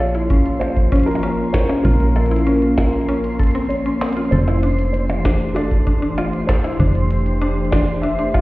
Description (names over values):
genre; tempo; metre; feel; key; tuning
IDM; 97 BPM; 4/4; straight; unclear; A4 = 440 Hz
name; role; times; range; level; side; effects
felt-muted upright piano; melody; 0.0-8.4 s; A4 to E5; -26 LUFS; equal; digital delay
warbly tape-like pad; sustained chords; 0.0-8.4 s; E3 to C5; -22 LUFS; left 1 dB; chorus, built-in reverb, sidechain pumping
mallet-like synth pluck; arpeggios; 0.0-8.4 s; C4 to Db5; -24 LUFS; left 1 dB; chorus, digital delay
woody FM bass; bass; 0.0-8.4 s; F1 to Bb1; -21 LUFS; equal; none
twinkling granular texture; texture; 0.0-8.4 s; C6; -34 LUFS; right 2 dB; built-in reverb
glitchy drum kit; drums; 0.1-8.4 s; hi-hat, percussion blips, snare drum; -27 LUFS; right 1 dB; studio reverb, ping-pong delay
electronic kick drum; drums; 0.3-8.4 s; none; -18 LUFS; equal; studio reverb
room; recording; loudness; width
light reverb; heard muffled through a wall, stone room reverb, EQ; -15 LUFS; side -19 dB against mid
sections
0.0-8.4 A section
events
none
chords
0.0 Bbmadd9; 4.3 Fmaj7